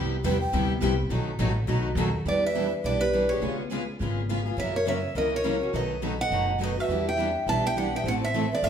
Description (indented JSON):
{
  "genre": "acoustic string swing (jazz manouche)",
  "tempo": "208 BPM",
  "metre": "4/4",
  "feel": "swing 59% on 8ths",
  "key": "unclear",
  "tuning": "A4 = 439 Hz",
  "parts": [
    { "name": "picked steel-string acoustic guitar", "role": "accompaniment", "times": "0.0-8.7 s", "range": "B2 to A4", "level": "-31 LUFS", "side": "left 5 dB", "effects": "none" },
    { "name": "picked steel-string acoustic guitar", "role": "accompaniment", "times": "0.0-8.7 s", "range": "B2 to B4", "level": "-32 LUFS", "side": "right 3 dB", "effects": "none" },
    { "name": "upright bass", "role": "bass", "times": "0.0-8.7 s", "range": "F#1 to F#2", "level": "-30 LUFS", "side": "equal", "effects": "none" },
    { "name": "breathy mellow round clay ocarina", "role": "second line", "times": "0.2-8.7 s", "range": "G4 to G5", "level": "-31 LUFS", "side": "right 1 dB", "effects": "none" },
    { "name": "picked steel-string acoustic guitar", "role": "melody", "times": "2.3-8.7 s", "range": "B4 to A5", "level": "-27 LUFS", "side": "right 2 dB", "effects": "none" }
  ],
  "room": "wet large studio reverb, RT60 1.0 s",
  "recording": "band playing live in one room",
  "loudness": "-24 LUFS",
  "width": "side -8 dB against mid",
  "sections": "0.0-2.3 A section; 2.3-8.7 B section",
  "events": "ocarina solo 0.0-2.3",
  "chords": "0.0 Cmaj9; 1.1 B7; 2.3 Em7; 3.4 C#7; 4.6 F#7; 5.7 B7; 6.9 Em7; 8.0 Am",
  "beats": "0.25 0.53 0.82 | 1.11 1.40 1.69 1.98 | 2.26 2.55 2.84 3.13 | 3.42 3.71 4.00 4.29 | 4.58 4.87 5.15 5.44 | 5.73 6.02 6.31 6.60 | 6.89 7.18 7.47 7.76 | 8.04 8.33 8.62"
}